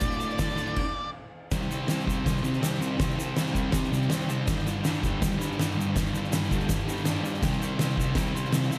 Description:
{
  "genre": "garage rock duo or trio",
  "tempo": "162 BPM",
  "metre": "4/4",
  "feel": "straight",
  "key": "unclear",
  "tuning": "A4 = 440 Hz",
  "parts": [
    { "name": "octave-fuzz lead guitar", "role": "melody", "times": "0.0-1.1 s", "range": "D5", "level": "-34 LUFS", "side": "equal", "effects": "distortion" },
    { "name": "thick fuzz guitar", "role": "riff", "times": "0.0-8.8 s", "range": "D2 to C4", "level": "-30 LUFS", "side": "equal", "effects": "distortion" },
    { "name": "oversized low-tuned drum kit", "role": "drums", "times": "0.0-8.6 s", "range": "crash cymbal, kick drum, snare drum", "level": "-31 LUFS", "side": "equal", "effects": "none" },
    { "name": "egg shaker", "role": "percussion", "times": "0.0-8.8 s", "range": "none", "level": "-44 LUFS", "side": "equal", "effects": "none" }
  ],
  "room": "light reverb",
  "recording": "none",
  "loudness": "-28 LUFS",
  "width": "mono",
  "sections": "0.0-1.5 A section; 1.5-8.8 B section",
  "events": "stop 0.8-1.5",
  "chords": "0.0 D5; 1.5 C5; 4.5 G5; 7.4 C5",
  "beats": "| 0.01 0.39 0.77 1.14 | 1.51 1.89 2.26 2.63 | 3.00 3.37 3.74 4.11 | 4.48 4.85 5.22 5.59 | 5.96 6.33 6.70 7.06 | 7.43 7.80 8.17 8.54"
}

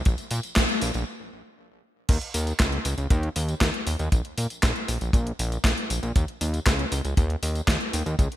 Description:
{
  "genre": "italo disco",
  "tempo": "118 BPM",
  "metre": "4/4",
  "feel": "straight",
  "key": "unclear",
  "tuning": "A4 = 440 Hz",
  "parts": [
    { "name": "fat analog bass", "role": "bass", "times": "0.0-8.3 s", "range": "Bb1 to Bb2", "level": "-27 LUFS", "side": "equal", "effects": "digital delay" },
    { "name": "clean 12-bit digital drum machine", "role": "drums", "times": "0.1-8.4 s", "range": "crash cymbal, handclaps, hi-hat, snare drum, tambourine", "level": "-27 LUFS", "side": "equal", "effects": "overdrive, gated reverb" },
    { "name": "kick drum", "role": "drums", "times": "0.1-8.3 s", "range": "none", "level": "-22 LUFS", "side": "equal", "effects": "none" }
  ],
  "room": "light reverb, studio reverb",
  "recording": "bright 1980s-style digital production",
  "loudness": "-23 LUFS",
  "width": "side -14 dB against mid",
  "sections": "0.0-2.1 A section; 2.1-8.4 B section",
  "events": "stop 1.1-2.1",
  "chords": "none",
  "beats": "| 0.05 0.56 1.07 1.58 | 2.09 2.60 3.10 3.61 | 4.12 4.63 5.14 5.65 | 6.16 6.66 7.17 7.68 | 8.19"
}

